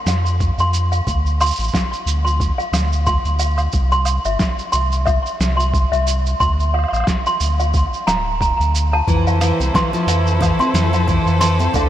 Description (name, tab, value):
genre	folktronica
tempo	90 BPM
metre	4/4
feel	swing 56% on 16ths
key	F major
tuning	A4 = 440 Hz
part	toy piano	second line	0.1-11.9 s	E5 to C6	-21 LUFS	equal	tape echo
part	warm sub bass	bass	0.1-11.9 s	D1 to F2	-18 LUFS	equal	none
part	lo-fi sampler-style drum kit	drums	0.1-11.9 s	hi-hat, shaker, snare drum, woodblock	-25 LUFS	right 1 dB	overdrive
part	electronic kick drum	drums	0.4-11.9 s	none	-21 LUFS	equal	overdrive
part	warm string quartet	sustained chords	9.1-11.9 s	F3 to C5	-24 LUFS	equal	none
part	nylon-string guitar	arpeggios	9.1-11.9 s	D3 to C4	-21 LUFS	left 1 dB	lush chorus, tape echo
room	moderate huge ambient reverb, RT60 8.8 s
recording	dreamy mix soaked in reverb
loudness	-15 LUFS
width	side -12 dB against mid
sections	0.0-11.9 A section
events	none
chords	0.0 F5; 1.1 N.C.; 9.1 Fmaj7